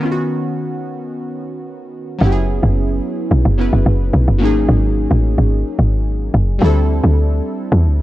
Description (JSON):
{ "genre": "amapiano", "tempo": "109 BPM", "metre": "4/4", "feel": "straight", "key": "unclear", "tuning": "A4 = 436 Hz", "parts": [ { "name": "glassy digital keys", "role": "accompaniment", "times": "0.0-8.0 s", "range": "D#3 to B4", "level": "-20 LUFS", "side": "equal", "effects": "chorus, phaser" }, { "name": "woody log drum bass", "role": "bass", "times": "2.2-8.0 s", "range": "F#1 to E2", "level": "-13 LUFS", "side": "equal", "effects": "none" } ], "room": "digital ambience", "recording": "dry, gritty hardware recording, cassette tape", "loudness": "-13 LUFS", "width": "side -16 dB against mid", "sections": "0.0-2.2 A section; 2.2-8.0 B section", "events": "drop 2.2-8.0", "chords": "0.0 C#9sus4; 2.2 F#9sus4; 4.4 G#9sus4; 6.6 D9sus4", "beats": "| 0.01 0.56 1.11 1.66 | 2.21 2.76 3.31 3.86 | 4.41 4.96 5.51 6.07 | 6.62 7.17 7.72" }